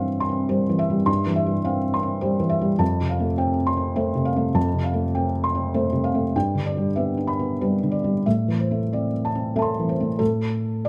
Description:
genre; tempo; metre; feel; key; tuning
neoclassical minimalist piano; 89-106 BPM; 3/4; rubato; A minor; A4 = 444 Hz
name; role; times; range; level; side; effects
felt-muted upright piano; solo; 0.0-10.9 s; F2 to C6; -23 LUFS; equal; none
room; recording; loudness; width
light reverb; close, detailed microphones; -23 LUFS; mono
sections
0.0-10.2 A section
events
none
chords
0.0 C/G; 2.8 F; 6.3 G; 8.3 Am; 10.2 N.C.

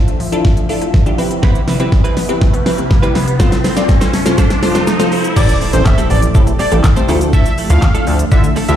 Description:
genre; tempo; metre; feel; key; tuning
dance-pop; 122 BPM; 4/4; straight; A minor; A4 = 440 Hz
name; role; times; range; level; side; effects
wavetable chord stab; accompaniment; 0.0-8.8 s; A3 to D5; -19 LUFS; left 1 dB; sidechain pumping
ethereal airy pad; sustained chords; 0.0-8.8 s; C2 to E5; -21 LUFS; right 1 dB; ensemble chorus, built-in reverb, sidechain pumping
riser and impact; sound effects; 0.6-7.3 s; none; -23 LUFS; equal; none
wide unison pluck; arpeggios; 0.1-5.1 s; C3 to C4; -25 LUFS; left 3 dB; sidechain pumping, dub echo
pop drum kit; drums; 0.1-8.8 s; crash cymbal, handclaps, hi-hat, kick drum, shaker, snare drum; -13 LUFS; equal; none
direct-recorded clean electric guitar; riff; 1.4-8.8 s; F3 to C5; -23 LUFS; right 6 dB; analog chorus
wide unison lead; melody; 5.4-8.8 s; C5 to F5; -20 LUFS; left 1 dB; sidechain pumping, dub echo
chorused synth bass; bass; 5.4-8.8 s; A1 to D3; -13 LUFS; equal; sidechain pumping
room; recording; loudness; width
light reverb, digital ambience; played on a big sound system in a bare room, large studio reverb; -10 LUFS; side -10 dB against mid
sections
0.0-5.4 A section; 5.4-8.8 B section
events
build-up 0.0-5.4; drum fill 0.0-5.4; riser 0.6-5.4; drop 5.4-8.8; impact 5.4-7.3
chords
0.0 Dmadd9; 1.2 Cmaj7; 3.4 F; 5.4 Am7; 7.1 Dmadd9

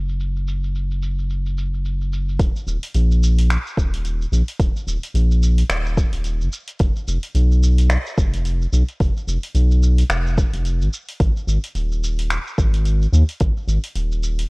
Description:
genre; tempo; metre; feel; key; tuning
organic downtempo; 109 BPM; 4/4; swing 58% on 16ths; Eb minor; A4 = 439 Hz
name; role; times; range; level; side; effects
round analog bass; bass; 0.0-14.4 s; Eb1 to Eb2; -17 LUFS; equal; sidechain pumping
deep house drum kit; drums; 0.1-14.5 s; finger snaps, hi-hat, shaker; -28 LUFS; equal; low-pass filter on perc, low-pass filter on hats, low-pass filter on snare, low-pass filter on room
electronic kick drum; drums; 2.4-13.5 s; none; -19 LUFS; equal; overdrive
room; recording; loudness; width
little or no reverb; worn, warbling old tape, cassette tape, warbly pitch drift; -17 LUFS; side -31 dB against mid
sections
0.0-2.4 A section; 2.4-14.5 B section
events
none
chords
none

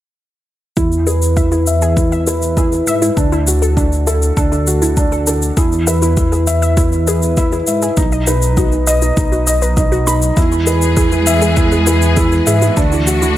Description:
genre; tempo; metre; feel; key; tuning
piano and strings electronica; 100 BPM; 4/4; straight; E major; A4 = 440 Hz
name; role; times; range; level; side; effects
warbly dusty pluck; arpeggios; 0.8-13.3 s; D4 to B5; -23 LUFS; equal; chorus, sidechain pumping, digital delay
felt-muted upright piano; riff; 0.8-13.4 s; D4 to E5; -16 LUFS; equal; low-pass filter, digital delay
dark detuned saw bass; bass; 0.8-13.4 s; B1 to G#2; -16 LUFS; equal; sidechain pumping
electronic kick drum; drums; 0.8-12.9 s; none; -16 LUFS; equal; overdrive
shaker; drums; 0.8-13.3 s; none; -22 LUFS; left 2 dB; overdrive
warm symphonic string section; sustained chords; 10.4-13.4 s; E3 to G#4; -18 LUFS; equal; sidechain pumping
room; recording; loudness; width
light reverb; none; -11 LUFS; side -13 dB against mid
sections
0.8-13.4 A section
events
filter sweep on felt piano 0.8-13.4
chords
0.8 E; 3.2 D; 5.6 E; 8.0 B; 10.4 E; 12.8 Dadd9

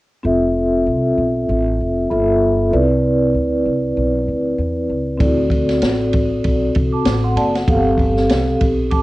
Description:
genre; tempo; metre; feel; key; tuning
hip hop, jazz-hop; 97 BPM; 4/4; swing 58% on 16ths; C major; A4 = 438 Hz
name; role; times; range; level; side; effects
vibraphone with soft mallets; accompaniment; 0.2-9.0 s; B3 to D6; -16 LUFS; equal; low-pass filter, cassette tape
upright bass; bass; 0.2-9.0 s; F1 to E2; -21 LUFS; equal; none
open jazz drum kit; drums; 5.2-9.0 s; hi-hat, kick drum, ride cymbal, snare drum; -19 LUFS; equal; vintage 12-bit sampler grit
room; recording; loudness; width
light reverb; home recording on cassette; -15 LUFS; side -18 dB against mid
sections
0.3-9.0 A section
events
none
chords
0.3 Fmaj7; 2.1 G13; 2.7 Cmaj9; 5.2 D7; 7.7 G9sus4

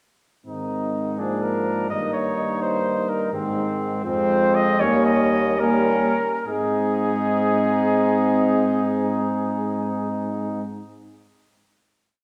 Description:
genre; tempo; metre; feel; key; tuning
classical, brass quintet; 68-85 BPM (dotted quarters); 6/8; rubato; Ab major; A4 = 440 Hz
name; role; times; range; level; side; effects
warm trumpet; second line; 0.5-10.6 s; C4 to Eb4; -29 LUFS; equal; none
warm French horn; accompaniment; 0.5-10.6 s; Ab3 to C4; -28 LUFS; equal; none
warm trombone; accompaniment; 0.5-10.6 s; Eb3 to Ab3; -31 LUFS; equal; none
bright bass trombone; bass; 0.5-10.6 s; Eb2 to Ab2; -29 LUFS; equal; none
warm cornet; melody; 1.2-10.6 s; Ab4 to Eb5; -27 LUFS; equal; none
room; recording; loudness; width
wet recital hall reverb, RT60 1.5 s; heard from further back in the room; -22 LUFS; mono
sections
0.5-6.5 A section; 6.5-9.9 final chord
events
slowing down 2.6-6.5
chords
0.5 Ab; 1.2 Bb7/Ab; 1.9 Eb/G; 3.3 Ab; 4.1 Fm; 4.8 Eb7; 6.5 Ab

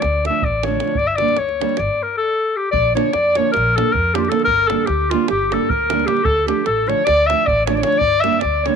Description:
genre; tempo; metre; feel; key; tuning
balkan folk, Balkan wedding band; 307 BPM (eighths); 9/8; straight; G dorian sharp4; A4 = 440 Hz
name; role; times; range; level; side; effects
bright clarinet; melody; 0.0-8.8 s; F4 to E5; -17 LUFS; left 4 dB; none
upright bass; bass; 0.0-8.7 s; G1 to F2; -24 LUFS; equal; none
davul; percussion; 0.0-8.7 s; none; -26 LUFS; right 5 dB; none
nylon-string guitar; accompaniment; 0.3-8.8 s; D3 to D4; -23 LUFS; right 16 dB; none
clear clarinet; second line; 2.7-8.8 s; F4 to E5; -23 LUFS; right 12 dB; none
room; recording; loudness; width
light reverb; 1960s-style stereo; -15 LUFS; side -6 dB against mid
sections
0.0-2.7 A section; 2.7-8.8 A section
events
none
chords
0.0 Dm; 1.0 Gm; 2.7 Bb; 4.5 Gm; 6.3 Dm; 8.0 Gm

